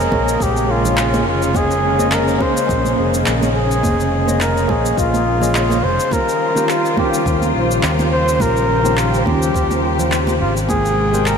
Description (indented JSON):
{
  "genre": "sunset chillout",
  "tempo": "105 BPM",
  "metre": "4/4",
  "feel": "swing 55% on 16ths",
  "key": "Bb dorian",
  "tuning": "A4 = 438 Hz",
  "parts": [
    { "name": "warm flugelhorn", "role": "melody", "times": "0.0-11.4 s", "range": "F4 to C5", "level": "-19 LUFS", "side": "equal", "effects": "diffuse ambient delay" },
    { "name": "tine electric piano", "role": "accompaniment", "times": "0.0-11.4 s", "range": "Eb3 to G5", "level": "-21 LUFS", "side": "left 1 dB", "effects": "medium stereo tremolo, auto-pan, vintage 12-bit sampler grit, ping-pong delay" },
    { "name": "muted studio string section", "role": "sustained chords", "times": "0.0-11.4 s", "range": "C3 to G5", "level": "-22 LUFS", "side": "left 1 dB", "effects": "none" },
    { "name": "fingered electric bass", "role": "bass", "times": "0.0-11.4 s", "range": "F1 to Eb2", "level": "-21 LUFS", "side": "equal", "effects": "none" },
    { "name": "electronic cabasa and handclaps", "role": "drums", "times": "0.0-11.4 s", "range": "none", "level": "-25 LUFS", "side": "left 1 dB", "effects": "studio reverb" },
    { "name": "electronic kick drum", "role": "drums", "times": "0.1-10.8 s", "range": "none", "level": "-23 LUFS", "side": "equal", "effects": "studio reverb" },
    { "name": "congas", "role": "percussion", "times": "0.1-11.2 s", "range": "none", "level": "-27 LUFS", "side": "right 4 dB", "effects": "none" }
  ],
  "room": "wet huge ambient reverb, RT60 7.3 s",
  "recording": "dreamy mix soaked in reverb",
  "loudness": "-14 LUFS",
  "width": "side -6 dB against mid",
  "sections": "0.0-11.4 A section",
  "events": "none",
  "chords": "0.0 Bbm11; 6.1 Eb13; 10.7 Abmaj9",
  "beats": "0.40 0.97 | 1.55 2.12 2.69 3.26 | 3.83 4.40 4.97 5.55 | 6.12 6.69 7.26 7.83 | 8.40 8.97 9.55 10.12 | 10.69 11.26"
}